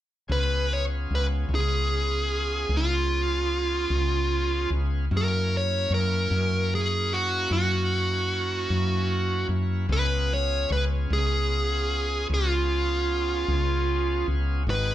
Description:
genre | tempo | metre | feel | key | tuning
slow blues | 50 BPM (dotted quarters) | 12/8 | straight | Db mixolydian | A4 = 440 Hz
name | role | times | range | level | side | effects
dark smooth lead guitar | melody | 0.3-14.9 s | F4 to Db5 | -26 LUFS | right 1 dB | overdrive
bright tonewheel organ | sustained chords | 0.3-14.9 s | Bb3 to Ab4 | -36 LUFS | left 1 dB | slow rotary speaker
woody fretless electric bass | bass | 0.3-14.9 s | Ab1 to Gb2 | -26 LUFS | equal | none
room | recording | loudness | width
moderate large studio reverb, RT60 1.1 s | band playing live in one room | -23 LUFS | side -12 dB against mid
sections
0.3-14.9 A section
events
none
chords
0.3 Db7; 5.1 Gb7; 9.9 Db7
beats
| 0.29 1.50 2.70 3.90 | 5.10 6.30 7.50 8.70 | 9.89 11.09 12.29 13.48 | 14.67

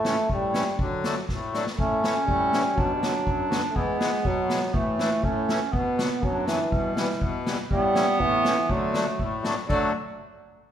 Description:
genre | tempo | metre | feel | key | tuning
alpine folk, alpine dance band | 121 BPM | 2/4 | straight | D major | A4 = 440 Hz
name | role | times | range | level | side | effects
warm euphonium | melody | 0.0-9.9 s | D3 to B3 | -27 LUFS | right 1 dB | none
accordion | accompaniment | 0.0-9.9 s | F#2 to D4 | -29 LUFS | left 3 dB | none
street-band drum kit | drums | 0.0-9.8 s | crash cymbal, hi-hat, kick drum, snare drum | -29 LUFS | equal | none
warm clarinet | second line | 1.8-9.9 s | G3 to D4 | -27 LUFS | right 2 dB | none
room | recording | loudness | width
moderate recital hall reverb, RT60 1.6 s | recorded in a church or concert hall | -22 LUFS | side -10 dB against mid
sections
0.0-9.7 A section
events
drum fill 1.3-1.8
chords
0.0 A7; 0.8 D; 1.8 A; 2.8 Bm; 3.7 E; 4.7 Asus4; 5.2 A; 5.7 Bm; 6.7 Em/B; 7.7 A7; 8.7 D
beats
0.29 | 0.78 1.28 | 1.78 2.27 | 2.77 3.26 | 3.75 4.24 | 4.73 5.23 | 5.73 6.22 | 6.72 7.21 | 7.71 8.20 | 8.70 9.20 | 9.70

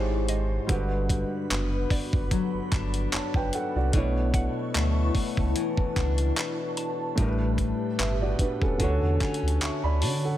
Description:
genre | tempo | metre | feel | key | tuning
contemporary R&B | 74 BPM | 4/4 | swing 54% on 16ths | unclear | A4 = 441 Hz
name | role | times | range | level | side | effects
felt-muted upright piano | accompaniment | 0.0-10.4 s | A2 to C#6 | -31 LUFS | right 2 dB | none
glassy FM pad | sustained chords | 0.0-10.4 s | G#3 to C#6 | -35 LUFS | left 3 dB | ensemble chorus, built-in reverb, phaser
picked steel-string acoustic guitar | arpeggios | 0.0-10.4 s | G2 to D4 | -32 LUFS | left 6 dB | tape echo
sub bass with octave | bass | 0.0-10.4 s | E1 to D3 | -27 LUFS | equal | none
dusty soul sampler-style drum kit | drums | 0.3-10.2 s | handclaps, hi-hat, kick drum | -28 LUFS | equal | none
mallet-like synth pluck | texture | 0.3-7.5 s | D5 to A5 | -43 LUFS | right 1 dB | chorus, tape echo
room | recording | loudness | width
little or no reverb | none | -24 LUFS | side -13 dB against mid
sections
0.0-10.4 A section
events
none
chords
0.0 G#maj7; 0.7 Gmaj7; 3.9 Bm11; 7.2 A9sus4; 8.8 Dmaj7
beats
| 0.69 1.50 2.31 3.12 | 3.94 4.75 5.56 6.37 | 7.18 7.99 8.80 9.61

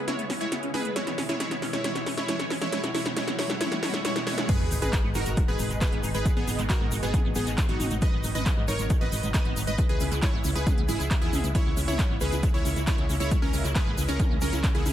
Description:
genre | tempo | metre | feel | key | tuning
uplifting trance | 136 BPM | 4/4 | straight | G# minor | A4 = 442 Hz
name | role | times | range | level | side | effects
supersaw stab | melody | 0.0-14.9 s | B3 to D#5 | -31 LUFS | equal | sidechain pumping, digital delay
liquid acid bass | arpeggios | 0.0-14.9 s | G#3 to E4 | -37 LUFS | right 3 dB | phaser, ensemble chorus, sidechain pumping, digital delay
solid FM bass | bass | 0.0-14.9 s | G#1 to G#2 | -30 LUFS | equal | sidechain pumping, high-pass filter
riser and sub drop | sound effects | 0.5-6.3 s | none | -37 LUFS | equal | none
analog string pad | sustained chords | 0.1-14.9 s | B2 to F#4 | -36 LUFS | equal | ensemble chorus, sidechain pumping
big-room dance drum kit | drums | 0.1-14.9 s | crash cymbal, handclaps, hi-hat, snare drum, toms | -32 LUFS | equal | overdrive
electronic kick drum | drums | 4.5-14.7 s | none | -26 LUFS | equal | overdrive
tube shaker | percussion | 4.5-14.9 s | none | -40 LUFS | left 5 dB | none
room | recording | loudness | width
little or no reverb | none | -24 LUFS | side -12 dB against mid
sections
0.0-4.5 A section; 4.5-14.9 B section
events
build-up 0.0-4.5; drum fill 0.0-4.5; filter sweep on acid bass 0.0-4.5; riser 0.5-4.5; drop 4.5-14.9; impact 4.5-6.3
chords
0.0 C#m7; 1.0 E; 4.5 G#m; 9.8 C#m7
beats
0.08 0.52 | 0.96 1.40 1.84 2.28 | 2.73 3.17 3.61 4.05 | 4.49 4.93 5.37 5.81 | 6.25 6.70 7.14 7.58 | 8.02 8.46 8.90 9.34 | 9.78 10.23 10.67 11.11 | 11.55 11.99 12.43 12.87 | 13.31 13.76 14.20 14.64

